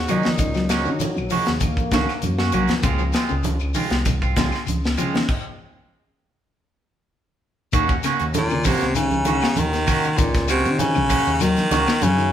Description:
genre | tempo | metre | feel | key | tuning
afrobeat | 98 BPM | 4/4 | straight | Eb dorian | A4 = 439 Hz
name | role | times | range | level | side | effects
raspy tenor saxophone | melody | 0.0-1.0 s | Eb4 | -30 LUFS | equal | none
clear trombone | second line | 0.0-1.0 s | Bb2 | -35 LUFS | right 3 dB | none
smooth synth bass | bass | 0.0-12.3 s | Bb1 to Eb3 | -25 LUFS | equal | none
electric guitar through a small old amp | arpeggios | 0.1-12.3 s | Db3 to Gb3 | -27 LUFS | left 3 dB | none
electric guitar at the edge of break-up | stabs | 0.1-11.9 s | Ab3 to Gb4 | -26 LUFS | right 6 dB | spring reverb
tight funk drum kit | drums | 0.1-12.2 s | crash cymbal, hi-hat, kick drum, snare drum | -24 LUFS | left 1 dB | none
claves | percussion | 0.1-12.0 s | none | -38 LUFS | left 5 dB | none
congas | percussion | 0.1-12.2 s | none | -28 LUFS | right 4 dB | none
shekere | percussion | 0.1-12.3 s | none | -32 LUFS | left 5 dB | none
muted trombone section | second line | 0.6-3.4 s | F3 to Bb3 | -30 LUFS | left 3 dB | none
raspy baritone saxophone | melody | 8.4-12.3 s | Bb2 to Eb3 | -20 LUFS | left 1 dB | none
room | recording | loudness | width
wet stone room reverb, RT60 1.1 s | band playing live in one room | -18 LUFS | side -10 dB against mid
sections
0.0-7.7 A section; 7.7-12.3 B section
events
stop 5.3-7.7; baritone saxophone solo 7.7-12.3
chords
0.0 Ebm7; 2.8 Dbmaj7; 7.7 Ebm7

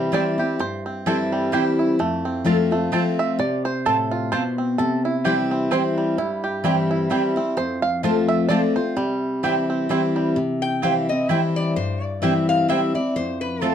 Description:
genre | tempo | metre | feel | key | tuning
bluegrass | 129 BPM | 3/4 | swing 56% on 8ths | C major | A4 = 440 Hz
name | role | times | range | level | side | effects
bluegrass banjo | melody | 0.0-10.4 s | G3 to F5 | -25 LUFS | right 3 dB | none
picked steel-string acoustic guitar | accompaniment | 0.0-13.7 s | F2 to F4 | -21 LUFS | left 2 dB | none
mandolin | stabs | 0.1-13.7 s | C4 to A5 | -25 LUFS | right 8 dB | none
lap resonator guitar | second line | 10.6-13.7 s | A4 to G5 | -25 LUFS | left 4 dB | none
room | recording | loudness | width
moderate studio reverb, RT60 0.5 s | dark, warm production | -19 LUFS | side -9 dB against mid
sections
0.0-10.4 A section; 10.4-13.7 A section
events
five-string banjo solo 0.0-10.4; resonator guitar played with a steel bar solo 10.4-13.7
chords
0.0 C; 2.0 F; 4.8 C; 7.6 F; 9.0 C; 13.2 F

